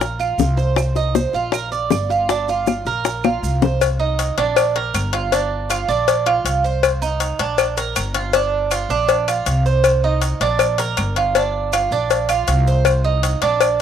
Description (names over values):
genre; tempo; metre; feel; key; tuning
latin, Cuban son and guajira; 159 BPM; 4/4; straight; C minor; A4 = 440 Hz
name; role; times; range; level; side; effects
Cuban tres; arpeggios; 0.0-13.8 s; D4 to D5; -20 LUFS; right 6 dB; none
upright bass; bass; 0.0-13.8 s; G1 to C2; -22 LUFS; equal; none
bongos and cowbell; percussion; 0.0-13.8 s; none; -19 LUFS; left 10 dB; none
maracas; percussion; 0.0-13.8 s; none; -33 LUFS; right 9 dB; none
claves; percussion; 0.2-13.8 s; none; -28 LUFS; right 8 dB; none
room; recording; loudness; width
light reverb; home recording on cassette; -16 LUFS; side -8 dB against mid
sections
0.0-3.8 A section; 3.8-13.8 B section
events
drum fill 3.2-3.8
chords
0.0 Bb5; 0.8 Cm7; 1.5 G5; 3.0 Bb5; 3.8 Cm7; 4.6 G5; 6.1 Bb; 6.8 Cm7; 7.6 G5; 9.1 Bb; 9.8 Cm7; 10.6 G5; 12.1 Bb; 12.9 Cm7